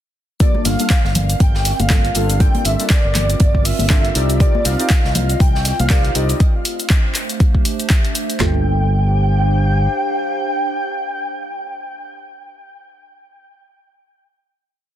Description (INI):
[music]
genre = deep house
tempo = 120 BPM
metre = 4/4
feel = swing 57% on 16ths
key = G minor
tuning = A4 = 442 Hz
[part]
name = breathy flute-like synth lead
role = melody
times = 0.4-12.2 s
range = D5 to G5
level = -24 LUFS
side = equal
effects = ensemble chorus, tape echo
[part]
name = deep mellow chord stab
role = stabs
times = 0.4-12.2 s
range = G3 to D5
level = -25 LUFS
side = left 1 dB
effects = chorus, sidechain pumping, tape echo
[part]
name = crisp fusion drum kit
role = drums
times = 0.4-6.4 s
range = hi-hat, snare drum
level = -32 LUFS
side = right 4 dB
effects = high-pass filter on hats, high-pass filter on snare, high-pass filter on room
[part]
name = deep house drum kit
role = drums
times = 0.4-8.5 s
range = handclaps, kick drum, snare drum, toms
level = -14 LUFS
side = equal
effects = none
[part]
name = punchy analog drum machine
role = drums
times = 0.4-8.4 s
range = handclaps, hi-hat, shaker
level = -22 LUFS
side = left 1 dB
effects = overdrive
[part]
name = warbly tape-like pad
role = texture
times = 1.1-12.4 s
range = A3 to F5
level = -27 LUFS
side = right 2 dB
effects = chorus, built-in reverb, sidechain pumping
[part]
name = congas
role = percussion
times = 0.5-5.9 s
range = none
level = -24 LUFS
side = left 2 dB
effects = none
[part]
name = fingered electric bass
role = bass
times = 0.7-9.9 s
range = G1 to C2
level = -18 LUFS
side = equal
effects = tube saturation, sidechain pumping
[sound]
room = little or no reverb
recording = dense, heavily limited modern master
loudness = -14 LUFS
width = side -11 dB against mid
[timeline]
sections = 0.4-8.4 drop; 8.4-12.4 final chord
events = drop 0.4-8.4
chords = 0.4 Gm9; 4.2 Cm9; 6.4 Am7; 8.4 Gm9